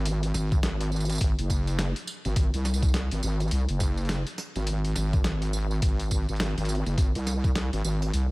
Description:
glitch hop; 104 BPM; 4/4; swing 61% on 16ths; A4 = 439 Hz
wobble bass; bass; 0.0-8.3 s; F#1 to B#1; -26 LUFS; equal; chorus
boom bap sampler-style drum kit; drums; 0.1-8.3 s; hi-hat, snare drum, tambourine; -33 LUFS; equal; studio reverb
electronic kick drum; drums; 0.5-7.5 s; -25 LUFS; equal; studio reverb
digital ambience; echo-heavy mix; -24 LUFS; side -23 dB against mid
0.0-8.3 A section

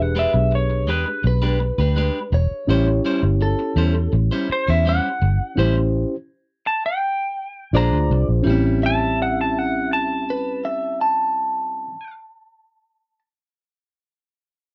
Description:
blues; 83 BPM; 4/4; straight; A mixolydian; A4 = 440 Hz
lightly driven lead guitar; melody; 0.0-12.1 s; B4 to Bb5; -25 LUFS; equal
mellow reed electric piano; accompaniment; 0.0-11.9 s; B#3 to C#5; -27 LUFS; equal
vintage muted fingered electric bass; bass; 0.0-11.9 s; E1 to E2; -21 LUFS; equal
clean electric guitar; stabs; 0.2-12.0 s; G3 to B#4; -30 LUFS; equal
electric guitar through a small old amp; second line; 1.3-13.2 s; A4 to A5; -28 LUFS; equal
light reverb; dry, close 1970s-style studio recording; -20 LUFS; mono
0.0-8.5 A section; 8.5-11.4 B section
stop 5.6-7.7
0.0 E7#9; 2.7 A7#9; 7.7 Bb9; 8.5 A7#9

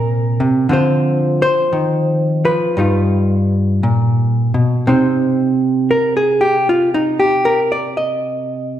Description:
solo jazz; 58 BPM; 4/4; swing 69% on 8ths, rubato; C minor; A4 = 440 Hz
hollow-body jazz guitar; solo; 0.0-8.8 s; G2 to Eb5; -13 LUFS; equal
wet recital hall reverb, RT60 1.7 s; recorded in a church or concert hall; -13 LUFS; side -11 dB against mid
0.0-4.9 A section; 4.9-8.8 B section
hollow-body jazz guitar solo 4.9-8.8
0.0 Cm7; 0.7 Dm7; 2.8 G7alt; 4.9 Cm

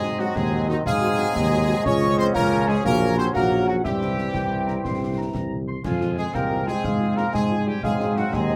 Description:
military-style march for wind band; 120 BPM (dotted quarters); 6/8; straight; F minor; A4 = 440 Hz
bright trumpet section; melody; 0.0-8.6 s; Eb4 to Db5; -33 LUFS; equal
clear euphonium; second line; 0.0-8.6 s; Eb3 to Db4; -30 LUFS; equal
hollow small flute group; second line; 0.0-8.6 s; Eb5 to Db6; -34 LUFS; equal
warm woodwind section; second line; 0.0-8.6 s; Db5 to C6; -32 LUFS; equal
mellow French horn section; accompaniment; 0.0-8.6 s; Gb3 to Gb4; -32 LUFS; equal
clear trombone section; sustained chords; 0.0-8.6 s; E3 to Db4; -34 LUFS; equal
warm tuba; bass; 0.0-8.6 s; Bb1 to Ab2; -27 LUFS; equal
concert snare drum, concert bass drum and clash cymbals; drums; 0.0-8.5 s; -33 LUFS; equal
moderate booth ambience, RT60 0.2 s; -22 LUFS; mono
0.0-8.6 A section
0.0 Ab7; 1.9 Db; 2.9 Gb/Bb; 3.8 C; 5.8 Fm; 6.8 Fm/Ab; 7.8 Ab7

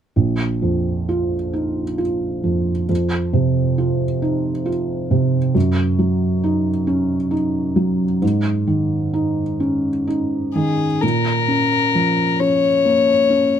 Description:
neoclassical piano and strings; 44 BPM (dotted quarters); 6/8; rubato; Bb minor; A4 = 439 Hz
felt-muted upright piano; accompaniment; 0.2-13.6 s; Bb1 to F4; -17 LUFS; right 2 dB
warm violin; melody; 10.5-13.6 s; Ab4 to Db5; -17 LUFS; left 6 dB
light reverb; close, detailed microphones; -16 LUFS; side -9 dB against mid
0.2-11.0 A section; 11.0-13.6 B section
0.2 Bb5; 2.9 F5; 5.5 Ebm/Gb; 8.2 Ab5; 11.0 Bbm

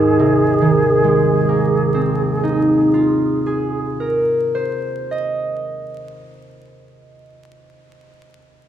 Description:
classical, impressionist duo for flute and harp; 33 BPM; 4/4; rubato; Ab major; A4 = 440 Hz
concert flute; melody; 0.0-3.8 s; Ab4; -20 LUFS; right 2 dB
concert harp; accompaniment; 0.0-7.9 s; Ab1 to Eb5; -16 LUFS; equal
moderate concert hall reverb, RT60 2.3 s; minimal, uncompressed stereo recording, vinyl crackle; -15 LUFS; side -10 dB against mid
0.0-6.4 A section
0.0 Ab69

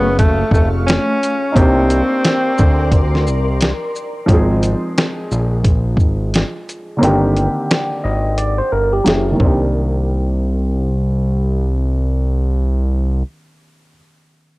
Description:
lo-fi hip hop; 88 BPM; 4/4; swing 62% on 16ths; C minor; A4 = 442 Hz
breathy tenor saxophone; melody; 0.0-3.6 s; A3 to C#4; -18 LUFS; equal; low-pass filter
warm upright piano; accompaniment; 0.0-14.6 s; D3 to G#4; -20 LUFS; equal; low-pass filter
granular cloud pad; sustained chords; 0.0-4.3 s; A3 to C#6; -25 LUFS; equal; built-in reverb, low-pass filter
fat analog bass; bass; 0.0-13.2 s; F1 to D2; -16 LUFS; equal
dusty soul sampler-style drum kit; drums; 0.2-9.6 s; hi-hat, kick drum, shaker, snare drum; -15 LUFS; equal
barky tine electric piano; second line; 8.0-9.3 s; G4 to Eb5; -20 LUFS; right 1 dB; overdrive, phaser, low-pass filter, tape echo
light reverb; dry, gritty hardware recording, cassette tape; -14 LUFS; side -22 dB against mid
0.0-4.3 A section; 4.3-9.7 B section; 9.7-12.5 C section
filter sweep on upright piano 4.3-9.7; kick muted 7.0-9.7
0.0 F7alt; 1.6 Cm9; 4.3 Ab6; 7.0 Cm9/G; 9.1 F#9; 9.4 Cm9

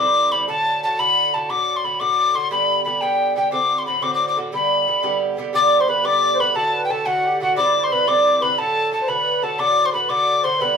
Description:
celtic folk; 119 BPM (dotted quarters); 6/8; straight; A4 = 440 Hz
mellow hollow wooden whistle; melody; 0.0-10.8 s; F#5 to D6; -18 LUFS; left 3 dB
Irish bouzouki; accompaniment; 0.0-10.8 s; G2 to G4; -24 LUFS; right 6 dB
accordion; second line; 5.5-10.8 s; F#4 to D5; -24 LUFS; equal; light tremolo tuning
wet studio reverb, RT60 0.6 s; band playing live in one room; -16 LUFS; side -6 dB against mid
0.0-5.5 A section; 5.5-10.8 A section
0.5 D; 2.5 G; 3.5 D7; 4.5 G; 6.6 D; 7.6 Cadd9; 8.6 D

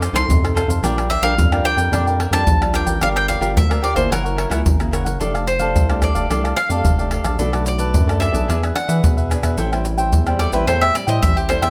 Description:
samba and choro; 110 BPM; 4/4; straight; F major; A4 = 441 Hz
bowl-back mandolin; melody; 0.0-11.7 s; G4 to D6; -24 LUFS; equal
cavaquinho; accompaniment; 0.0-11.7 s; D4 to G5; -26 LUFS; equal
nylon-string guitar; accompaniment; 0.0-11.7 s; F#2 to Bb4; -29 LUFS; equal
round analog bass; bass; 0.0-11.7 s; F1 to E3; -23 LUFS; equal
maracas, pandeiro, tamborim and surdo; percussion; 0.0-11.7 s; -22 LUFS; equal
light reverb; close, detailed microphones; -18 LUFS; mono
0.0-5.2 A section; 5.2-11.7 B section
mandolin solo 5.2-11.7
0.0 F7; 0.8 Bb6; 3.0 Gm7; 4.1 Gb9; 5.2 F69; 7.4 Bm7; 8.5 E7; 9.6 Am7

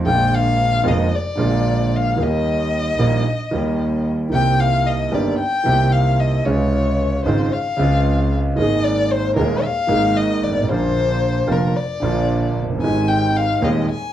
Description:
tango; 113 BPM; 4/4; rubato; A4 = 441 Hz
warm concert grand piano; accompaniment; 0.0-13.8 s; Eb1 to Ab4; -19 LUFS; right 2 dB
rich double bass; bass; 0.0-13.8 s; F1 to Eb2; -23 LUFS; equal
warm violin; second line; 0.1-14.1 s; Bb4 to Ab5; -21 LUFS; left 4 dB
wet club reverb, RT60 0.5 s; heard from further back in the room; -16 LUFS; side -11 dB against mid
0.0-14.1 A section
violin solo 0.0-14.1
0.1 Bb7; 2.2 Eb; 4.3 Cm7; 6.5 Dbmaj7; 8.6 Absus2; 10.7 Bb; 12.8 Abmaj7

